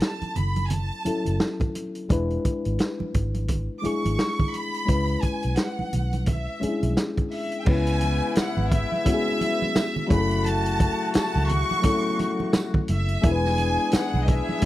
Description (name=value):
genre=lush 1970s-style soul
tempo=86 BPM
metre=4/4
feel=swing 58% on 16ths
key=F# minor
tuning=A4 = 443 Hz
part: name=bright studio violin section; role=melody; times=0.0-14.7 s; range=D#5 to D6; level=-29 LUFS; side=right 1 dB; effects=none
part: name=reed electric piano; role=accompaniment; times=0.0-14.7 s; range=F#3 to B4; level=-28 LUFS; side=left 3 dB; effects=none
part: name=vintage drum kit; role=drums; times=0.0-14.7 s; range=crash cymbal, hi-hat, kick drum, snare drum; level=-24 LUFS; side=equal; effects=none
part: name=vintage muted fingered electric bass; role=bass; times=0.2-14.4 s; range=E1 to C#2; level=-25 LUFS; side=equal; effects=none
part: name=congas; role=percussion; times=0.2-14.6 s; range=none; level=-32 LUFS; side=right 4 dB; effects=none
part: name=clear horn section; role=stabs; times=7.7-14.7 s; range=C#3 to G#4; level=-32 LUFS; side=left 5 dB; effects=slapback echo
part: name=tambourine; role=percussion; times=8.4-14.1 s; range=none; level=-43 LUFS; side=right 10 dB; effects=none
room=small room ambience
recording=dry, close 1970s-style studio recording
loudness=-22 LUFS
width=side -15 dB against mid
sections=0.0-7.7 A section; 7.7-14.7 B section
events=none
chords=0.0 F#m7; 2.1 E7; 4.9 C#m7; 10.1 F#m7; 13.2 E7